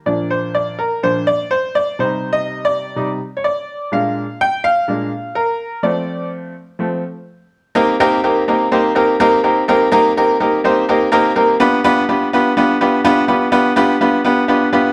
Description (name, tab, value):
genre	soul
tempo	125 BPM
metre	4/4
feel	straight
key	unclear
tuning	A4 = 437 Hz
part	clear baby grand piano	solo	0.0-14.9 s	Bb2 to B5	-16 LUFS	equal	none
room	moderate large studio reverb, RT60 0.8 s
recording	none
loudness	-16 LUFS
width	mono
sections	0.0-7.8 A section; 7.8-14.9 B section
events	grand piano solo 0.0-7.8; grand piano fill 14.5-14.9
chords	0.1 Bb; 2.0 Cm; 3.7 Bb7; 5.8 F; 7.8 Cm7; 11.6 G7/B